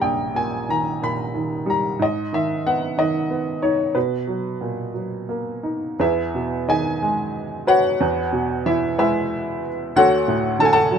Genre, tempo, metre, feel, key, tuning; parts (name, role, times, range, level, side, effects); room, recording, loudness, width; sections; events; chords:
classical, lyrical solo piano; 61 BPM (dotted quarters); 6/8; rubato; B major, E major from 6.0 s; A4 = 445 Hz
clear upright piano; solo; 0.0-11.0 s; A#1 to B5; -19 LUFS; equal
light reverb; minimal, uncompressed stereo recording; -19 LUFS; side -7 dB against mid
0.0-6.0 A section; 6.0-11.0 B section
0.0 D#; 2.0 G#m; 4.0 Bmaj7; 6.0 Emaj7; 8.0 C#m7/E; 10.0 Dmaj7